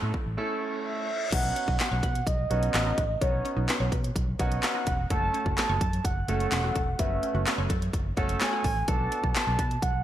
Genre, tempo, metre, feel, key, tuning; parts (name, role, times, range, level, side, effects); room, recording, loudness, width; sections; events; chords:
dance-pop; 127 BPM; 4/4; straight; A4 = 436 Hz
warm concert grand piano; accompaniment; 0.0-9.6 s; A3 to B4; -33 LUFS; right 2 dB; wide subtle chorus, sidechain pumping
vintage muted fingered electric bass; bass; 0.0-10.0 s; E1 to B2; -30 LUFS; equal; sidechain pumping
house drum kit; drums; 0.1-9.9 s; crash cymbal, handclaps, hi-hat, kick drum, snare drum; -29 LUFS; equal; overdrive, gated reverb
reverse cymbal; sound effects; 0.6-1.3 s; -38 LUFS; left 4 dB
mellow horn-like synth lead; melody; 0.8-10.0 s; C#5 to A5; -31 LUFS; right 1 dB; chorus, digital delay
resonant blip pluck; arpeggios; 1.3-9.7 s; D#3 to D5; -40 LUFS; left 1 dB; phaser, sidechain pumping, digital delay
light reverb; bright 1980s-style digital production; -25 LUFS; side -12 dB against mid
0.0-1.3 A section; 1.3-10.0 B section
reverse cymbal 0.6-1.3
0.0 A; 1.3 Badd9; 5.1 F#m; 8.9 Bm7